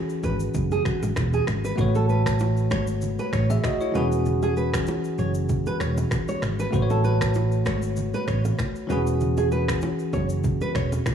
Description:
afrobeats; 97 BPM; 4/4; swing 55% on 16ths; E major; A4 = 440 Hz
bell-like tine electric piano; accompaniment; 0.0-11.1 s; E3 to E5; -27 LUFS; left 3 dB; fast stereo tremolo
afro-pop drum kit; drums; 0.1-11.1 s; finger snaps, kick drum, rim click, shaker; -30 LUFS; equal
nylon-string guitar; riff; 0.2-10.9 s; F#4 to C#5; -30 LUFS; right 5 dB; digital delay
hollow-body short-scale fingered electric bass; bass; 0.2-11.0 s; E1 to A1; -24 LUFS; right 1 dB
congas and bongos; percussion; 0.6-11.1 s; -34 LUFS; right 6 dB
light reverb; small room reverb; -21 LUFS; side -8 dB against mid
0.0-11.1 A section
0.0 E69; 1.8 A69; 3.9 E69; 6.7 A69; 8.9 E69

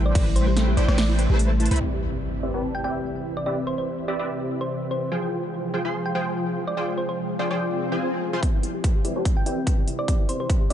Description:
future bass; 145 BPM; 4/4; swing 54% on 16ths, half-time; C major; A4 = 440 Hz
ethereal airy pad; sustained chords; 0.0-10.7 s; C3 to B4; -32 LUFS; equal; ensemble chorus, built-in reverb, sidechain pumping
supersaw stab; riff; 0.0-10.7 s; F3 to C6; -28 LUFS; equal; analog chorus, cassette tape, sidechain pumping, low-pass filter
long sustained 808-style bass; bass; 0.0-1.8, 8.4-10.7 s; A1 to C2; -21 LUFS; equal; sidechain pumping, high-pass filter
thumb-piano-like synth pluck; melody; 0.1-10.7 s; C5 to G5; -32 LUFS; equal; chorus, cassette tape, sidechain pumping, ping-pong delay
thumb-piano-like synth pluck; arpeggios; 0.1-1.8, 8.4-10.7 s; A3 to C5; -34 LUFS; left 3 dB; chorus, sidechain pumping, ping-pong delay
big-room dance drum kit; drums; 0.2-1.8, 8.4-10.7 s; crash cymbal, hi-hat, snare drum; -30 LUFS; equal; low-pass filter on hats, low-pass filter on cymbals, low-pass filter on snare, low-pass filter on room
electronic kick drum; drums; 0.2, 8.4-10.6 s; -21 LUFS; equal
impact and swell; sound effects; 1.8-3.5, 7.7-8.4 s; -33 LUFS; left 1 dB
digital ambience; dark, warm production, nothing above 10.9 kHz; -22 LUFS; side -10 dB against mid
0.0-1.8 A section; 1.8-8.4 B section; 8.4-10.7 C section
drop 0.0-1.8; kick drops out 1.4-1.8; drum fill 1.6; impact 1.8-3.5; filter sweep on supersaw synth 1.8-8.4, 8.4-10.7; swell 7.7-8.4; build-up 8.4-10.7; filter sweep on synth arpeggio sound 8.4-10.7; filter sweep on ambient pad 8.4-10.7
0.0 Am7; 1.8 Cmaj7; 5.1 Fmadd9; 8.4 Cmaj7

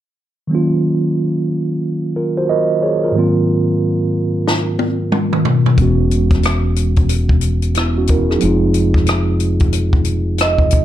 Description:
R&B, neo-soul; 91 BPM; 4/4; swing 63% on 16ths; Eb dorian; A4 = 442 Hz
mellow tine electric piano; accompaniment; 0.5-10.8 s; Ab2 to Eb5; -16 LUFS; right 2 dB; medium stereo tremolo
compact cocktail drum kit; drums; 4.5-10.8 s; hi-hat, kick drum, rim click, snare drum, toms; -16 LUFS; left 1 dB
fingered electric bass; bass; 5.8-10.8 s; E1 to F1; -17 LUFS; equal
moderate studio reverb, RT60 0.8 s; dark, warm production; -13 LUFS; side -12 dB against mid
0.5-10.8 A section
drum fill 4.5-5.8; tine electric piano fill 10.1-10.8
0.5 Ebm9; 3.1 Ab13; 5.8 E69; 8.4 Fm7

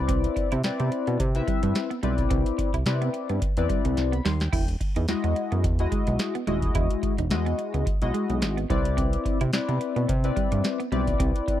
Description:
early-eighties boogie funk; 108 BPM; 4/4; swing 56% on 16ths; A4 = 439 Hz
chorused polysynth; accompaniment; 0.0-11.6 s; G#3 to C6; -28 LUFS; left 5 dB
fat analog bass; bass; 0.0-11.3 s; D#1 to C3; -26 LUFS; equal
clean electric guitar; riff; 0.1-11.5 s; G3 to E4; -32 LUFS; right 7 dB; wide subtle chorus
booming analog drum machine; drums; 0.1-11.6 s; crash cymbal, hi-hat, kick drum, snare drum; -27 LUFS; equal
little or no reverb; dry, close 1970s-style studio recording; -23 LUFS; side -12 dB against mid
0.0-11.6 A section
drum fill 4.0-4.5
0.0 Cmaj9; 4.5 Emaj9; 8.7 Cmaj9

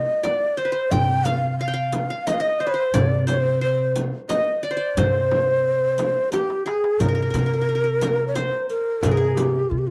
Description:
Arabic maqam ensemble; 89 BPM; 3/4; straight; C minor; A4 = 437 Hz
breathy mellow ney; melody; 0.0-9.9 s; F4 to G5; -24 LUFS; equal; cassette tape
qanun; second line; 0.0-9.9 s; G4 to G5; -32 LUFS; equal; cassette tape
upright bass; bass; 0.0-9.9 s; C3; -27 LUFS; equal; transformer saturation
darbuka; percussion; 0.2-9.5 s; -30 LUFS; equal
frame drum; percussion; 0.2-9.5 s; -31 LUFS; equal
riq; percussion; 0.2-9.5 s; -36 LUFS; equal
moderate booth ambience, RT60 0.2 s; home recording on cassette; -22 LUFS; mono
0.0-7.0 A section; 7.0-9.9 B section
drum fill 6.3-7.0

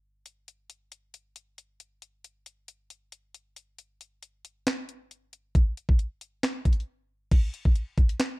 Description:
hip hop; 136 BPM; 4/4; half-time
trap drum kit; drums; 0.3-8.3 s; crash cymbal, finger snaps, hi-hat, kick drum, snare drum; -23 LUFS; equal
little or no reverb; dark, warm production; -24 LUFS; side -23 dB against mid
0.3-7.3 A section; 7.3-8.4 B section
break 6.9-7.3

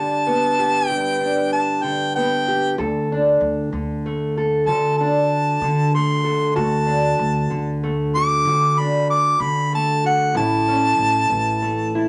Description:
acoustic country blues, solo or duo; 64 BPM (dotted quarters); 12/8; straight; D major; A4 = 440 Hz
clear harmonica; melody; 0.0-12.1 s; F#5 to D6; -22 LUFS; equal
fingerpicked steel-string acoustic guitar; accompaniment; 0.0-12.1 s; D2 to A4; -24 LUFS; equal
upright bass; bass; 2.8-12.1 s; A1 to D3; -26 LUFS; equal
wet studio reverb, RT60 0.5 s; -19 LUFS; mono
0.0-12.1 A section
harmonica solo 0.0-12.1
0.0 G; 2.8 D; 10.3 A

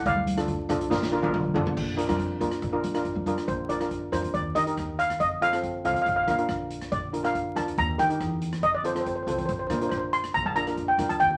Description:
calypso; 140 BPM; 4/4; straight; Bb major; A4 = 440 Hz
steel pan; melody; 0.0-0.9, 3.5-11.4 s; C5 to C6; -28 LUFS; equal
steel pan; accompaniment; 0.0-11.2 s; C4 to Bb4; -32 LUFS; equal
upright bass; bass; 0.0-11.4 s; Bb1 to F3; -37 LUFS; equal
street-band drum kit; drums; 0.1-11.3 s; crash cymbal, hi-hat, kick drum, rim click, snare drum, toms; -37 LUFS; equal
congas; percussion; 0.2-3.4, 10.5-11.4 s; -36 LUFS; equal
wet studio reverb, RT60 0.6 s; vinyl crackle; -27 LUFS; mono
0.0-1.8 A section; 1.8-3.5 B section; 3.5-11.4 C section
drum fill 0.9-1.8
0.1 Dm; 0.9 Bb; 4.3 Eb; 5.2 F; 6.1 Bb; 7.8 Eb; 8.6 F; 9.5 Bb

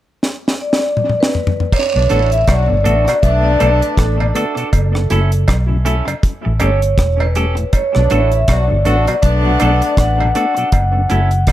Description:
roots reggae; 80 BPM; 4/4; swing 58% on 16ths; B minor; A4 = 440 Hz
deep reggae drum kit; drums; 0.2-11.5 s; crash cymbal, hi-hat, kick drum, rim click, snare drum, toms; -17 LUFS; equal; analog delay
vibraphone with medium hard mallets; melody; 0.6-11.4 s; A4 to F#5; -18 LUFS; equal; analog delay
cowbell and jawbone-type rattle; percussion; 1.7-11.5 s; -26 LUFS; right 4 dB
mellow horn section; second line; 1.9-10.3 s; A3 to F#4; -22 LUFS; left 2 dB; analog delay
mellow tonewheel organ; accompaniment; 1.9-11.2 s; F#2 to E4; -24 LUFS; left 2 dB; slow rotary speaker, analog delay
vintage muted fingered electric bass; bass; 2.0-11.5 s; E1 to B1; -15 LUFS; equal; tube saturation
clean electric guitar; accompaniment; 2.1-11.3 s; C#4 to A4; -24 LUFS; right 3 dB; analog delay
light reverb; echo-heavy mix; -12 LUFS; side -13 dB against mid
0.0-1.7 A section; 1.7-11.5 B section
drum fill 0.2-1.7
0.0 N.C.; 1.7 Bm7; 4.7 F#m7; 6.2 A7; 7.7 Bm7; 10.7 F#m7

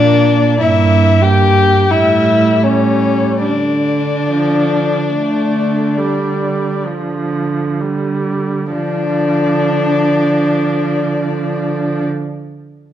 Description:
classical, slow romantic movement for string quartet; 30-54 BPM; 3/4; rubato; D minor; A4 = 438 Hz
muted violin; melody; 0.0-12.0 s; C#5 to G5; -22 LUFS; left 7 dB
muted violin; second line; 0.0-12.0 s; C#4 to G4; -16 LUFS; left 3 dB
muted viola; accompaniment; 0.0-12.0 s; F3 to Bb3; -20 LUFS; right 2 dB
muted cello; bass; 0.0-12.1 s; G2 to D3; -17 LUFS; right 4 dB
wet recital hall reverb, RT60 1.3 s; dark, warm production; -12 LUFS; side -11 dB against mid
0.0-8.7 A section; 8.7-12.9 B section
slowing down 0.0-8.7
0.0 Bb; 0.6 Edim/G; 1.9 A7; 3.4 Dm

